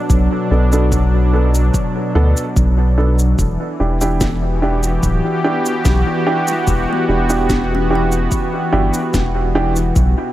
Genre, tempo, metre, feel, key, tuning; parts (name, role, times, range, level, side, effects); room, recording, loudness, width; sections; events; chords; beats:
ambient dub; 73 BPM; 4/4; straight; E dorian; A4 = 440 Hz
warm analog pad; sustained chords; 0.0-10.3 s; B2 to G4; -19 LUFS; equal; chorus, tremolo
soft dub sub bass; bass; 0.1-10.2 s; D1 to D2; -15 LUFS; equal
electronic cabasa and snare drum; drums; 0.1-10.1 s; -26 LUFS; left 1 dB; overdrive, dub echo
electronic kick drum; drums; 0.1-10.1 s; -20 LUFS; equal
warm upright piano; stabs; 0.5-9.7 s; B3 to A4; -21 LUFS; right 2 dB; dub echo
kalimba; arpeggios; 6.5-10.3 s; B3 to F#5; -26 LUFS; left 3 dB; dub echo
light reverb, digital ambience; -13 LUFS; side -14 dB against mid
0.0-10.3 A section
0.0 Bm7; 3.4 Em7
| 0.10 0.92 1.74 2.57 | 3.39 4.21 5.03 5.85 | 6.67 7.50 8.32 9.14 | 9.96